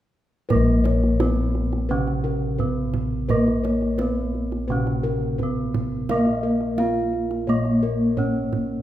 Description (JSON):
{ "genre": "Javanese gamelan", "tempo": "86 BPM", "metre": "4/4", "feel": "straight", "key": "unclear", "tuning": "A4 = 439 Hz", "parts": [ { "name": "gamelan-type bronze metallophone", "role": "melody", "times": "0.5-8.8 s", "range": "Bb3 to F4", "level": "-26 LUFS", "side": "right 1 dB", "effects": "none" }, { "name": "gamelan-type bronze metallophone", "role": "accompaniment", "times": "0.5-8.8 s", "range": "Db3 to Bb3", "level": "-26 LUFS", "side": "right 1 dB", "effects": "none" }, { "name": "gamelan-type bossed gongs", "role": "arpeggios", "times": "0.5-8.6 s", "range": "Bb4 to F5", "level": "-30 LUFS", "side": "left 3 dB", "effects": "none" }, { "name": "gamelan-type bossed gongs", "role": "bass", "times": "0.5-8.8 s", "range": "Bb1 to Bb4", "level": "-25 LUFS", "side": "left 1 dB", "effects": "none" }, { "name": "kendang", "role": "percussion", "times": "0.5-8.7 s", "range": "none", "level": "-29 LUFS", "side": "right 4 dB", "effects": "none" } ], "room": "moderate recital hall reverb, RT60 1.8 s", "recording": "minimal, uncompressed stereo recording", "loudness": "-20 LUFS", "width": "side -12 dB against mid", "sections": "0.5-8.8 A section", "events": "none", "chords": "none" }